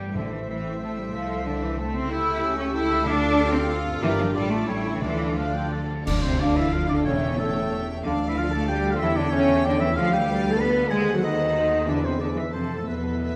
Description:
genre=classical, dramatic, fast romantic movement for symphony orchestra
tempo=185 BPM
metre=3/4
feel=rubato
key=D minor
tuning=A4 = 439 Hz
part: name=warm symphonic violin section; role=melody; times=0.0-13.4 s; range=G3 to A5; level=-42 LUFS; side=equal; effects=none
part: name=mellow flute section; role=second line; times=0.0-13.4 s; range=A4 to E6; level=-34 LUFS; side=equal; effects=none
part: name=warm clarinet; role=second line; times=0.0-5.9 s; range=G3 to C5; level=-39 LUFS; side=equal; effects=none
part: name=warm oboe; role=second line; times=0.0-13.4 s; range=G4 to B5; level=-35 LUFS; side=equal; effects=none
part: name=warm symphonic violin section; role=second line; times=0.0-13.4 s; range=A3 to D5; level=-40 LUFS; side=equal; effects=none
part: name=dark symphonic viola section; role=accompaniment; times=0.0-13.4 s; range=G3 to C5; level=-39 LUFS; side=equal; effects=none
part: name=warm French horn section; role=sustained chords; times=0.0-13.4 s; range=G3 to C5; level=-30 LUFS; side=equal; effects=none
part: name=concert harp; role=arpeggios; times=0.0-13.4 s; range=G2 to C5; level=-35 LUFS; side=equal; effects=none
part: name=rich symphonic cello section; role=bass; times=0.0-13.4 s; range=A2 to E4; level=-30 LUFS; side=equal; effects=none
part: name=rich symphonic double bass section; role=bass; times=0.0-13.4 s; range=G1 to G2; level=-32 LUFS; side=equal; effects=none
part: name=timpani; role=percussion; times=0.2-0.6, 3.1-7.5 s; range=E2 to D3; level=-37 LUFS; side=equal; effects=none
part: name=cymbal swell, clash cymbals and concert bass drum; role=percussion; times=4.0-6.7 s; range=none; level=-34 LUFS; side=equal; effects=none
room=wet recital hall reverb, RT60 1.8 s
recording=none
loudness=-24 LUFS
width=mono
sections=0.0-6.1 A section; 6.1-13.4 B section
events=band accent 6.1-6.4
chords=0.2 Am; 1.1 Am/C; 2.1 A7/C#; 3.1 Dm; 4.0 Gm; 4.4 Dm/A; 4.7 A7; 5.0 Dm; 7.1 A7/E; 8.0 Dm; 9.0 A7/E; 10.0 Bm7b5/D; 10.9 D#dim7; 11.9 E; 12.5 F

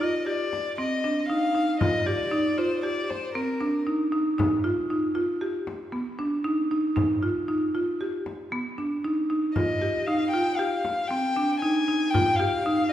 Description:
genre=contemporary instrumental, chamber music in an uneven meter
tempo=116 BPM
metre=5/4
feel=straight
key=Eb major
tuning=A4 = 439 Hz
part: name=rich violin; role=melody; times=0.0-3.8, 9.6-12.9 s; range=Bb4 to Ab5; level=-27 LUFS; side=left 3 dB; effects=none
part: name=buzzing marimba with hard mallets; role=arpeggios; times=0.0-12.8 s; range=B3 to G4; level=-25 LUFS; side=right 1 dB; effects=none
part: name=frame drum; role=percussion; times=0.5-12.4 s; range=none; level=-30 LUFS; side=left 2 dB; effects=none
room=wet recital hall reverb, RT60 1.8 s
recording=heard from further back in the room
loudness=-23 LUFS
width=side -11 dB against mid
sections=0.0-12.9 A section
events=none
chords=0.0 Eb; 4.4 Baug (rootless); 9.6 Eb

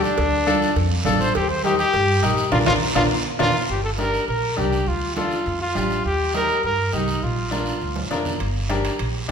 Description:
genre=latin, cumbia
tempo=204 BPM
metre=4/4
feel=straight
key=G minor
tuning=A4 = 440 Hz
part: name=breathy trumpet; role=melody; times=0.0-8.1 s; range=D4 to C5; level=-22 LUFS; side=left 1 dB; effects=none
part: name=bright upright piano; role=accompaniment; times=0.0-9.3 s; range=D4 to Bb4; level=-25 LUFS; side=left 3 dB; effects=none
part: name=upright bass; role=bass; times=0.0-9.3 s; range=G1 to G2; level=-26 LUFS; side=equal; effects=none
part: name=guiro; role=percussion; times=0.0-9.3 s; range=none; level=-32 LUFS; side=right 3 dB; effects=none
part: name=cowbell and timbales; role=percussion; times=0.2-3.5, 8.4-9.3 s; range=none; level=-30 LUFS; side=right 4 dB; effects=none
part: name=congas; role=percussion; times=0.5-9.3 s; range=none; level=-29 LUFS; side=right 5 dB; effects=none
room=wet recital hall reverb, RT60 1.5 s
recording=recorded in a church or concert hall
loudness=-19 LUFS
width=side -7 dB against mid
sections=0.0-3.7 A section; 3.7-9.3 B section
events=trumpet solo 0.0-3.7; band accent 2.5-3.7; drum fill 2.8-3.7, 8.0-8.4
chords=0.2 Dm; 1.4 Eb; 2.5 Bb; 3.7 Gm; 4.9 Dm; 6.0 Eb; 7.2 Bb; 8.4 Gm

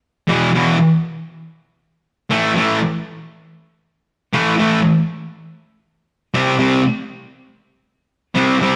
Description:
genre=rock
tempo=free time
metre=none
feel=none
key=unclear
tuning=A4 = 440 Hz
part: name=thick fuzz guitar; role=solo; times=0.3-8.8 s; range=E2 to C4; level=-17 LUFS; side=equal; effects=distortion
room=moderate stone room reverb, RT60 1.3 s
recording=rough rehearsal-room recording, warm saturation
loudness=-17 LUFS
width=mono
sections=0.0-8.8 A section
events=none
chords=0.0 E5; 2.3 A5; 6.3 C5

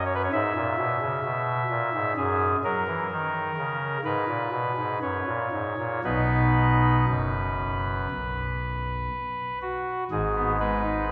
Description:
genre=classical, chorale-style piece for pipe organ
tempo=57-66 BPM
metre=4/4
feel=rubato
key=B major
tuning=A4 = 441 Hz
part: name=pipe organ, soft reed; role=solo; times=0.0-11.1 s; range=F#1 to E5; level=-26 LUFS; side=equal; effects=none
room=wet church reverb, RT60 3.1 s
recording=recorded in a church or concert hall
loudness=-26 LUFS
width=mono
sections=0.0-10.1 A section; 10.1-11.1 B section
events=none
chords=0.3 E/G#; 2.2 F#; 4.0 G#madd9; 5.0 F#; 6.0 B; 10.1 G#m

